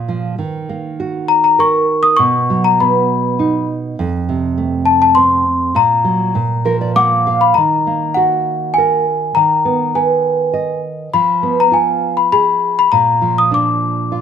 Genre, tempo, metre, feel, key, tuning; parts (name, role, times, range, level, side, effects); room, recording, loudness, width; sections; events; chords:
children's music, lullaby; 100 BPM; 3/4; rubato; Eb minor, Eb harmonic minor from 7.6 s; A4 = 439 Hz
nylon-string guitar; accompaniment; 0.0-14.2 s; F2 to Gb5; -17 LUFS; right 5 dB
celesta; melody; 1.3-14.2 s; Gb5 to Eb6; -13 LUFS; left 4 dB
light reverb; close, detailed microphones; -12 LUFS; side -8 dB against mid
0.0-7.6 A section; 7.6-14.2 B section
nylon-string guitar fill 6.3-7.6
0.4 Ebm; 2.2 B; 4.0 F; 5.7 Gb/Bb; 6.3 Bb5; 7.6 Ebm; 9.4 Abm/Eb; 11.1 Fdim; 12.9 Bb